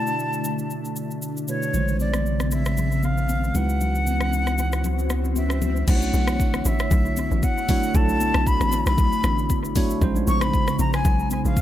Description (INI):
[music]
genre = amapiano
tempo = 116 BPM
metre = 4/4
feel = swing 55% on 16ths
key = B dorian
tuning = A4 = 440 Hz
[part]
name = mellow jazz flute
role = melody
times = 0.0-11.6 s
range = C#5 to C#6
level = -27 LUFS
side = left 2 dB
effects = analog delay
[part]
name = tine electric piano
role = accompaniment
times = 0.0-11.6 s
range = B2 to D5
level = -28 LUFS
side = right 4 dB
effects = wide subtle chorus, analog delay
[part]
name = glassy FM pad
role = sustained chords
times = 0.0-11.6 s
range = C#3 to C#5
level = -29 LUFS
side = left 1 dB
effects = ensemble chorus, built-in reverb, sidechain pumping
[part]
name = afro-pop drum kit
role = drums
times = 0.1-11.6 s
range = crash cymbal, hi-hat, kick drum, rim click, shaker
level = -25 LUFS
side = equal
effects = none
[part]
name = punchy sub bass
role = bass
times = 1.7-5.8 s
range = A#1 to C#2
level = -24 LUFS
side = equal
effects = none
[part]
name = congas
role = percussion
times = 1.7-11.6 s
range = none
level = -32 LUFS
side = left 5 dB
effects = analog delay
[part]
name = swell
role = sound effects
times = 4.7-5.9 s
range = none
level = -35 LUFS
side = left 3 dB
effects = none
[part]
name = hollow log drum bass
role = bass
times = 5.9-11.6 s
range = A1 to B1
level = -24 LUFS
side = equal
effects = none
[sound]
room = light reverb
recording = echo-heavy mix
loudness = -20 LUFS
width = side -12 dB against mid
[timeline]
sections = 0.0-5.9 A section; 5.9-11.6 B section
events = kick muted 3.8-5.9; swell 4.7-5.9; drop 5.9-11.6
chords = 0.0 Bm7; 1.7 A#m11; 3.5 C#m11; 5.9 Bm11; 10.0 A#m11